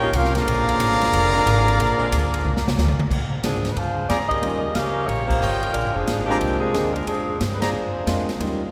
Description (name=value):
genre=jazz, big band swing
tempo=182 BPM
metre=4/4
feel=swing 65% on 8ths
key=Bb major, Bb mixolydian from 3.1 s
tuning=A4 = 440 Hz
part: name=bright trumpet section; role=melody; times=0.0-2.7 s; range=Db4 to Bb5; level=-26 LUFS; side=equal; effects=none
part: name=dark trombone section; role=second line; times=0.0-2.7 s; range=D3 to G4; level=-30 LUFS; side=equal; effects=none
part: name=bright saxophone section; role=sustained chords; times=0.0-2.1 s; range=none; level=barely audible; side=none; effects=none
part: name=upright bass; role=bass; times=0.0-8.7 s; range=F1 to Bb2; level=-27 LUFS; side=equal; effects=none
part: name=swinging big-band drum kit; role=drums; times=0.1-8.5 s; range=crash cymbal, hi-hat, kick drum, ride cymbal, snare drum, toms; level=-30 LUFS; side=equal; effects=none
part: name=mellow saxophone section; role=melody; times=3.4-8.3 s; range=F3 to F5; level=-26 LUFS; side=equal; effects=none
part: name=brilliant trumpet section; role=stabs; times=4.1-7.7 s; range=F4 to Bb5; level=-33 LUFS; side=equal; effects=none
part: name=warm concert grand piano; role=accompaniment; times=4.4-8.6 s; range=G3 to Ab4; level=-30 LUFS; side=equal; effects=none
room=wet cathedral reverb, RT60 5.8 s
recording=recorded in a church or concert hall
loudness=-21 LUFS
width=mono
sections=0.0-3.1 A section; 3.1-8.7 B section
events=drum fill 2.4-3.1; band accent 5.3, 7.6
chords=0.5 Bb9; 4.4 Eb9; 5.8 Bb9